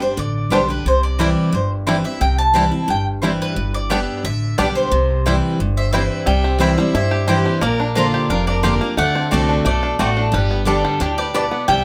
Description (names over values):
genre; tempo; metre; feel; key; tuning
bluegrass; 177 BPM; 4/4; straight; C major; A4 = 440 Hz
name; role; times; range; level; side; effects
mandolin; melody; 0.0-11.8 s; G4 to A5; -24 LUFS; equal; none
picked steel-string acoustic guitar; accompaniment; 0.0-11.8 s; F2 to G4; -23 LUFS; equal; none
upright bass; bass; 0.0-11.8 s; F1 to G2; -24 LUFS; equal; none
bluegrass banjo; arpeggios; 0.5-11.8 s; G3 to G4; -25 LUFS; equal; tape echo
mandolin; stabs; 0.5-11.4 s; Bb3 to Bb5; -26 LUFS; equal; none
clear fiddle; second line; 5.8-11.8 s; D4 to E5; -28 LUFS; equal; none
room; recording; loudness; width
moderate studio ambience, RT60 0.5 s; close, detailed microphones; -18 LUFS; mono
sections
0.0-6.3 A section; 6.3-11.8 B section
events
none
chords
0.0 G; 0.9 C; 3.6 G; 4.9 C; 7.6 Bb; 9.0 D7; 10.3 Gadd9